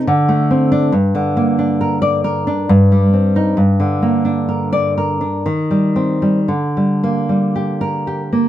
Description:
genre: romantic piece for solo classical guitar.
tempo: 55-71 BPM.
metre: 3/4.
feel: rubato.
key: G minor.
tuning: A4 = 440 Hz.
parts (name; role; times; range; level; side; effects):
nylon-string guitar; solo; 0.0-8.5 s; G2 to D5; -13 LUFS; equal; none.
room: moderate studio reverb, RT60 0.5 s.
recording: none.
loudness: -13 LUFS.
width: side -12 dB against mid.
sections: 0.0-8.5 A section.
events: none.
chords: 0.1 D5; 0.9 Gm; 2.7 Cm/G; 3.6 Gm; 5.5 Cm/Eb; 6.5 Gm/D.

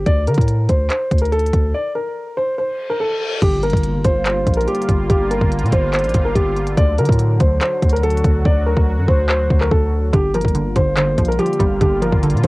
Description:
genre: hip hop, trap.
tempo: 143 BPM.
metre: 4/4.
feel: half-time.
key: G minor.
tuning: A4 = 441 Hz.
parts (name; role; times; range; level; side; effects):
dark baby grand piano; melody; 0.0-12.5 s; G4 to D5; -20 LUFS; equal; cassette tape.
distorted 808-style bass; bass; 0.0-12.5 s; G1 to D3; -18 LUFS; equal; distortion.
trap drum kit; drums; 0.1-12.5 s; crash cymbal, handclaps, hi-hat, kick drum; -18 LUFS; equal; cassette tape.
reverse cymbal and impact; sound effects; 2.8-5.1 s; none; -29 LUFS; left 2 dB; none.
sweeping resonant pad; sustained chords; 3.6-12.5 s; D3 to F#4; -25 LUFS; equal; chorus.
hollow square pluck; accompaniment; 10.1-12.5 s; D3 to G3; -21 LUFS; right 2 dB; chorus.
room: little or no reverb.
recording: home recording on cassette.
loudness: -14 LUFS.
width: side -21 dB against mid.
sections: 0.0-3.4 A section; 3.4-12.5 B section.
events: break 1.7-3.4; reverse cymbal 2.8-3.4; impact 3.4-5.1; hi-hats muted 8.5-10.1.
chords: 0.1 D5; 3.4 Gm7; 6.8 D; 10.1 Gm7.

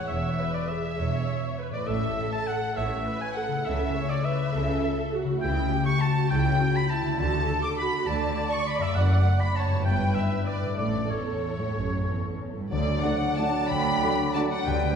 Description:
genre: classical, orchestral ballroom waltz.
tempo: 176-219 BPM.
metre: 3/4.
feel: rubato.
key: A major, D major from 5.4 s.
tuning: A4 = 442 Hz.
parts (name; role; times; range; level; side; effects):
warm symphonic violin section; melody; 0.0-15.0 s; C#5 to D6; -34 LUFS; left 4 dB; none.
bright oboe; second line; 0.0-15.0 s; B4 to D6; -33 LUFS; right 1 dB; none.
warm symphonic violin section; second line; 0.0-14.4 s; F#4 to D6; -36 LUFS; left 2 dB; none.
warm symphonic viola section; accompaniment; 0.0-14.4 s; A3 to D5; -32 LUFS; right 3 dB; none.
concert harp; arpeggios; 0.0-15.0 s; E2 to D6; -30 LUFS; left 4 dB; none.
clear symphonic double bass section; bass; 0.1-14.9 s; E1 to D2; -31 LUFS; right 2 dB; none.
rich symphonic cello section; bass; 0.1-14.9 s; D2 to D3; -32 LUFS; right 1 dB; none.
bright large flute ensemble; second line; 12.7-15.0 s; A4 to G5; -32 LUFS; right 2 dB; none.
warm clarinet; second line; 12.7-15.0 s; D4; -34 LUFS; right 1 dB; none.
warm bassoon; accompaniment; 12.7-15.0 s; F#3 to G3; -34 LUFS; right 2 dB; none.
warm French horn section; sustained chords; 13.0-14.5 s; A3 to D4; -36 LUFS; equal; none.
warm trombone section; sustained chords; 13.0-14.5 s; D3 to F#3; -36 LUFS; right 4 dB; none.
warm trumpet; stabs; 13.0-14.5 s; D5; -38 LUFS; right 2 dB; none.
room: wet scoring stage reverb, RT60 1.6 s.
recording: heard from further back in the room.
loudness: -24 LUFS.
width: side -7 dB against mid.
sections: 0.0-12.7 A section; 12.7-15.0 B section.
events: none.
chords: 0.1 E7; 1.9 A; 3.7 A/C#; 7.2 D; 9.0 D/F#; 9.8 Em/G; 10.8 A; 12.7 D.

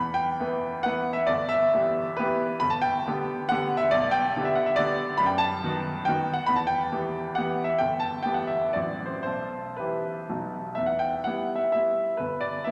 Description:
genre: classical, romantic triple-time dance for piano with dotted rhythms.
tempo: 112-149 BPM.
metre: 3/4.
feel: rubato.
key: E minor.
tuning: A4 = 440 Hz.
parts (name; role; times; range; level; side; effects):
clear grand piano; solo; 0.0-12.7 s; G1 to B5; -26 LUFS; equal; none.
room: wet concert hall reverb, RT60 2.5 s.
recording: none.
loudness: -26 LUFS.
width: mono.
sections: 0.0-10.8 A section; 10.8-12.7 B section.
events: none.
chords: 0.0 Em; 1.3 Em/G; 2.6 G; 3.9 G/B; 5.2 B7/F#; 6.5 Em; 7.8 Em/G; 8.7 F#dim/A; 9.2 Em/B; 10.3 B; 10.8 Em; 12.2 Em/G.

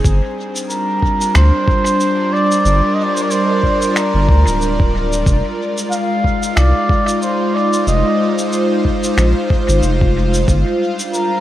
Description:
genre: ambient dub.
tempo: 92 BPM.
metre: 4/4.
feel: swing 57% on 16ths.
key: unclear.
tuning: A4 = 440 Hz.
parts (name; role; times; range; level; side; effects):
airy breathy pad; sustained chords; 0.0-11.4 s; G3 to F5; -18 LUFS; equal; chorus.
round analog bass; bass; 0.0-10.6 s; D1 to D2; -14 LUFS; equal; none.
electronic kick drum; drums; 0.0-10.6 s; none; -17 LUFS; equal; none.
electronic shaker and finger snaps; drums; 0.0-11.3 s; none; -24 LUFS; equal; dub echo.
trumpet with cup mute; melody; 0.7-11.4 s; Bb4 to F5; -19 LUFS; right 1 dB; dub echo.
room: moderate scoring stage reverb, RT60 2.0 s.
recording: vinyl crackle.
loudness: -13 LUFS.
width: side -13 dB against mid.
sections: 0.0-11.4 A section.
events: none.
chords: 0.0 Gm7; 5.3 Fm7; 10.5 Gm7.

